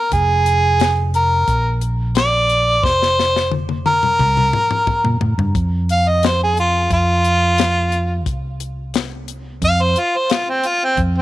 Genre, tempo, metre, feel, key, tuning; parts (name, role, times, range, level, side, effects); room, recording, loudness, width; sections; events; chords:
straight-eighth soul blues; 88 BPM; 4/4; straight; A4 = 441 Hz
warm harmonica; melody; 0.0-11.2 s; C4 to F5; -16 LUFS; right 1 dB; overdrive
fingered electric bass; bass; 0.1-11.2 s; F1 to Bb2; -19 LUFS; equal
tight funk drum kit; drums; 0.1-11.1 s; hi-hat, kick drum, snare drum, toms; -22 LUFS; left 4 dB
light reverb, small room ambience; 1960s-style stereo; -14 LUFS; side -15 dB against mid
0.0-5.5 A section; 5.5-11.2 B section
drum fill 2.8-5.5; harmonica solo 5.5-11.2
0.1 Fmadd11; 1.5 Bb; 2.8 F5; 4.2 C5; 5.5 F5